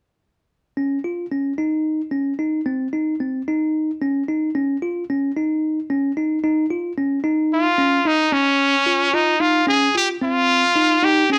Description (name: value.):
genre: progressive instrumental, progressive.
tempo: 222 BPM (eighths).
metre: 7/8.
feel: straight.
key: unclear.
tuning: A4 = 440 Hz.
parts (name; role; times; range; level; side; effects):
bell-like tine electric piano; arpeggios; 0.8-11.4 s; C4 to F4; -22 LUFS; equal; none.
brilliant trumpet; melody; 7.5-11.4 s; Db4 to Ab4; -18 LUFS; equal; none.
room: moderate studio reverb, RT60 0.8 s.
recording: none.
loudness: -20 LUFS.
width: mono.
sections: 0.8-8.3 A section; 8.3-11.4 B section.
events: none.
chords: 0.8 Dbadd9; 2.7 Cm; 4.5 Dbsus2; 8.3 Dbadd9; 10.2 Cm.